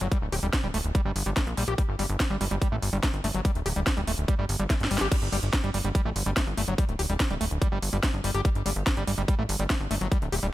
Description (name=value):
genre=psychedelic trance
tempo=144 BPM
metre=4/4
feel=straight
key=G harmonic minor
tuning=A4 = 441 Hz
part: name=screaming distorted acid line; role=riff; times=0.0-10.5 s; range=F#3 to G4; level=-32 LUFS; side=moving between left 4 dB and right 3 dB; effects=distortion, chorus, auto-pan, sidechain pumping, ping-pong delay
part: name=plucky analog bass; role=bass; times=0.0-10.5 s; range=D1 to Bb1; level=-28 LUFS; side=equal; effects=none
part: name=drum and bass drum kit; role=drums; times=0.0-10.5 s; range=crash cymbal, hi-hat, snare drum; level=-31 LUFS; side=equal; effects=overdrive
part: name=electronic kick drum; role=drums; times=0.1-10.2 s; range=none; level=-25 LUFS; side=equal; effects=none
room=digital ambience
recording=none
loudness=-24 LUFS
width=side -15 dB against mid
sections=0.0-5.1 A section; 5.1-10.5 B section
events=drum fill 4.7-5.1; band accent 5.0; drop 5.1-10.5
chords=0.0 G5